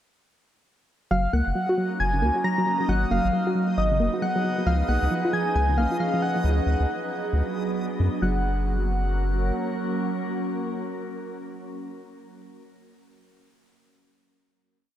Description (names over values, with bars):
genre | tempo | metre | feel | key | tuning
IDM | 135 BPM | 4/4 | swing 62% on 16ths | F# major | A4 = 440 Hz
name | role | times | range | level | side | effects
soft struck synth lead | melody | 1.1-11.4 s | D#5 to A#5 | -28 LUFS | left 1 dB | chorus, tape echo
glassy FM pad | sustained chords | 1.5-11.7 s | E#3 to B4 | -29 LUFS | right 1 dB | ensemble chorus, built-in reverb
soft round pluck | arpeggios | 1.1-8.4 s | C#3 to F#4 | -28 LUFS | right 1 dB | chorus, cassette tape, tape echo
round analog bass | bass | 1.1-9.5 s | F#1 to F#2 | -24 LUFS | equal | tube saturation
backwards swelling texture | texture | 1.6-6.5 s | D#4 to D#5 | -37 LUFS | right 1 dB | built-in reverb
room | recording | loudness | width
moderate plate reverb, RT60 3.5 s | echo-heavy mix | -22 LUFS | side -11 dB against mid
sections
1.1-8.2 groove; 8.2-11.8 final chord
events
none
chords
1.1 F#; 2.9 G#m7; 4.7 C#9; 6.4 Bm6/D; 8.2 F#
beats
| 1.11 1.55 2.00 2.44 | 2.89 3.33 3.78 4.22 | 4.67 5.11 5.55 6.00 | 6.44 6.89 7.33 7.78 | 8.22 8.66 9.11 9.55 | 10.00 10.44 10.89 11.33